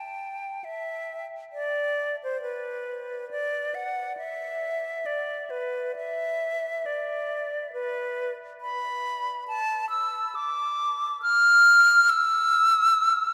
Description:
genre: classical, baroque-style fantasia for unaccompanied flute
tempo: 68 BPM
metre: 4/4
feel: rubato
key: unclear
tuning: A4 = 440 Hz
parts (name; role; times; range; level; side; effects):
- bright silver concert flute; solo; 0.0-13.3 s; B4 to F6; -25 LUFS; equal; none
room: wet cathedral reverb, RT60 6.8 s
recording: none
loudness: -25 LUFS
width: mono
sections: 0.0-13.3 A section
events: none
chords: none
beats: 0.63 | 1.53 2.43 3.31 4.18 | 5.05 5.96 6.85 7.72 | 8.61 9.48 10.35 11.22 | 12.10 12.97

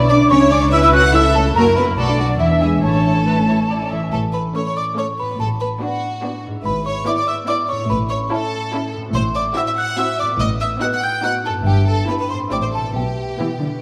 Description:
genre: cinematic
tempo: 143 BPM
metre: 3/4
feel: straight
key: A major, E minor from 9.1 s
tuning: A4 = 440 Hz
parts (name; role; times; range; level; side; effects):
- celesta; melody; 0.0-13.8 s; E5 to G6; -25 LUFS; equal; none
- dark studio violin section; melody; 0.0-13.7 s; C#4 to A4; -30 LUFS; equal; none
- rich studio viola section; accompaniment; 0.0-13.7 s; A3 to E5; -27 LUFS; equal; none
- concert harp; arpeggios; 0.0-13.8 s; F#2 to E5; -26 LUFS; equal; none
- dark studio double bass section; bass; 0.0-13.3 s; G1 to F#2; -24 LUFS; equal; none
- clear studio violin section; second line; 0.1-13.8 s; E4 to G5; -27 LUFS; equal; none
- silver concert flute; second line; 0.1-3.9 s; E5 to F#6; -22 LUFS; equal; none
- dark studio cello section; bass; 0.1-13.7 s; G2 to F#4; -23 LUFS; equal; none
room: wet scoring stage reverb, RT60 1.7 s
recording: none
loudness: -18 LUFS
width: mono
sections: 0.0-4.1 A section; 4.1-13.8 B section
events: none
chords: 0.3 A/C#; 1.6 F#7; 2.0 Bm7; 2.4 E7; 2.8 A; 5.4 Bm7/A; 6.7 E/G#; 7.9 A; 9.1 F#m7b5/A; 10.4 B7/A; 11.7 Em/G; 12.5 Am7; 13.0 Em/B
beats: | 0.30 0.72 1.13 | 1.55 1.97 2.40 | 2.83 3.27 3.70 | 4.13 4.55 4.97 | 5.39 5.82 6.24 | 6.65 7.07 7.48 | 7.90 8.32 8.73 | 9.15 9.57 9.98 | 10.40 10.82 11.24 | 11.66 12.09 12.51 | 12.95 13.39

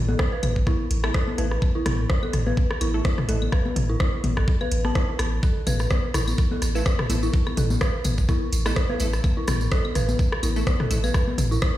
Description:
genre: minimal techno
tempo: 126 BPM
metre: 4/4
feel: swing 56% on 16ths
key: unclear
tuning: A4 = 438 Hz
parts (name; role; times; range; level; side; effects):
- punchy sub bass; bass; 0.0-11.6 s; A1; -24 LUFS; equal; sidechain pumping
- dark detuned synth bell; riff; 0.1-11.5 s; E4 to A5; -31 LUFS; right 2 dB; chorus, sidechain pumping, digital delay
- organic electronic drum kit; percussion; 0.1-11.7 s; claves, congas, rim click, toms; -27 LUFS; left 2 dB; dub echo
- booming analog drum machine; drums; 0.2-11.7 s; hi-hat, rim click; -32 LUFS; equal; none
- electronic kick drum; drums; 0.2-11.7 s; none; -22 LUFS; equal; overdrive
- wavetable chord stab; stabs; 1.0-3.4, 6.8-11.0 s; A3 to A4; -35 LUFS; right 1 dB; dub echo
- tambourine; percussion; 5.4-11.7 s; none; -36 LUFS; right 3 dB; none
room: light reverb, digital ambience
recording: played on a big sound system in a bare room, stone room reverb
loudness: -20 LUFS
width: side -14 dB against mid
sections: 0.0-11.8 A section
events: none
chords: 0.0 A5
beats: 0.19 0.67 1.14 | 1.62 2.10 2.57 3.05 | 3.52 4.00 4.48 4.95 | 5.43 5.91 6.38 6.86 | 7.33 7.81 8.29 8.76 | 9.24 9.72 10.19 10.67 | 11.14 11.62

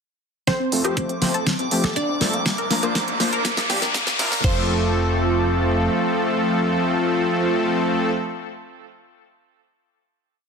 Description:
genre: progressive house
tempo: 121 BPM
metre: 4/4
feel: straight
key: F major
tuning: A4 = 439 Hz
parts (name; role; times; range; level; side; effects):
- wide unison pluck; melody; 0.5-8.1 s; C4 to D5; -28 LUFS; right 2 dB; ping-pong delay
- tight sequenced synth; arpeggios; 0.5-8.1 s; Bb3 to Bb4; -26 LUFS; equal; chorus, phaser, sidechain pumping, ping-pong delay
- electronic kick drum; drums; 0.5-4.5 s; none; -24 LUFS; equal; high-pass filter on kick
- pop drum kit; drums; 0.5-4.5 s; crash cymbal, hi-hat, snare drum; -24 LUFS; right 1 dB; none
- riser; sound effects; 1.6-4.4 s; none; -29 LUFS; left 2 dB; none
- drifting glass-harmonics texture; texture; 0.9-4.5 s; D6; -31 LUFS; right 4 dB; chorus, built-in reverb, sidechain pumping
- soft supersaw; stabs; 0.7-8.1 s; F3 to C5; -22 LUFS; left 1 dB; sidechain pumping, low-pass filter, ping-pong delay
- plucky analog bass; bass; 0.7-5.9 s; F1 to Bb1; -26 LUFS; equal; sidechain pumping, high-pass filter
- woodblock, cowbell and congas; percussion; 0.8-3.7 s; none; -30 LUFS; left 3 dB; sidechain pumping on perc
room: light reverb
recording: dense, heavily limited modern master, high-pass filter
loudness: -18 LUFS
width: side -5 dB against mid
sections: 0.5-4.4 build; 4.4-8.4 final chord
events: build-up 0.5-4.4; drum fill 0.5-4.4; filter sweep on supersaw synth 0.5-4.4; filter sweep 0.5-4.4; riser 1.6-4.4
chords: 0.5 F; 2.5 Bb; 4.4 F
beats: | 0.47 0.97 1.47 1.96 | 2.46 2.95 3.45 3.95 | 4.44 4.94 5.43 5.93 | 6.42 6.92 7.42 7.91

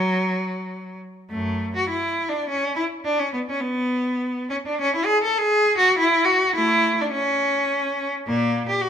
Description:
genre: classical, baroque-style suite movement for unaccompanied cello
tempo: 103 BPM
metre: 3/4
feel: rubato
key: F# minor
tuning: A4 = 445 Hz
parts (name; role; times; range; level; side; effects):
- rich cello; solo; 0.0-8.9 s; F#2 to A4; -20 LUFS; equal; none
room: moderate recital hall reverb, RT60 1.8 s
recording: minimal, uncompressed stereo recording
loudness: -19 LUFS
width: side -8 dB against mid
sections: 0.0-1.3 A section; 1.3-8.9 B section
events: none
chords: none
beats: 0.04 0.67 | 1.29 1.89 2.48 | 3.06 3.64 4.22 | 4.81 5.39 5.98 | 6.56 7.14 7.71 | 8.27 8.84

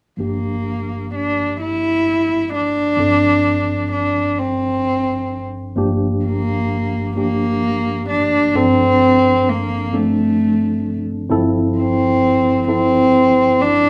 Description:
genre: acoustic folk-pop ballad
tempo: 43 BPM (dotted quarters)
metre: 6/8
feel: straight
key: G dorian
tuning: A4 = 437 Hz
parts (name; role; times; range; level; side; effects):
- warm cello; melody; 0.2-13.9 s; A3 to E4; -18 LUFS; equal; none
- tine electric piano; accompaniment; 0.2-13.9 s; G1 to A4; -22 LUFS; equal; none
room: moderate large studio reverb, RT60 0.9 s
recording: band playing live in one room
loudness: -17 LUFS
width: mono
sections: 0.2-5.8 A section; 5.8-13.9 B section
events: none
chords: 0.2 Gm7; 3.0 Dm7/G; 5.8 Gm7; 8.6 Dm7/G; 11.3 Fmaj7/G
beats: | 0.19 1.60 | 2.99 4.37 | 5.77 7.17 | 8.55 9.93 | 11.30 12.68

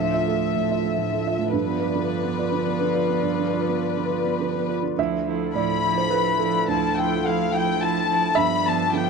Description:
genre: neoclassical piano and strings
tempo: 107 BPM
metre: 3/4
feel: rubato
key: D dorian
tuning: A4 = 439 Hz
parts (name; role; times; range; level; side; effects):
- warm chamber violin section; melody; 0.0-9.1 s; B4 to B5; -24 LUFS; left 8 dB; none
- rich cello; second line; 0.0-9.1 s; F3; -29 LUFS; right 11 dB; none
- dark grand piano; accompaniment; 0.0-9.1 s; D2 to E5; -25 LUFS; right 8 dB; none
- warm analog pad; sustained chords; 0.0-9.1 s; F4 to E5; -30 LUFS; left 14 dB; chorus
- dark viola; accompaniment; 5.0-9.1 s; B3 to E4; -31 LUFS; right 12 dB; none
room: light reverb, small room ambience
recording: 1960s-style stereo with parts hard left and right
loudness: -20 LUFS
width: side -4 dB against mid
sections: 0.0-5.0 A section; 5.0-9.1 B section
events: none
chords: 0.0 Dmadd9; 1.5 G7; 5.0 Dmadd9; 8.4 G7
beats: 0.42 0.98 | 1.54 2.10 2.66 | 3.24 3.82 4.40 | 4.98 5.55 6.11 | 6.68 7.24 7.80 | 8.35 8.91

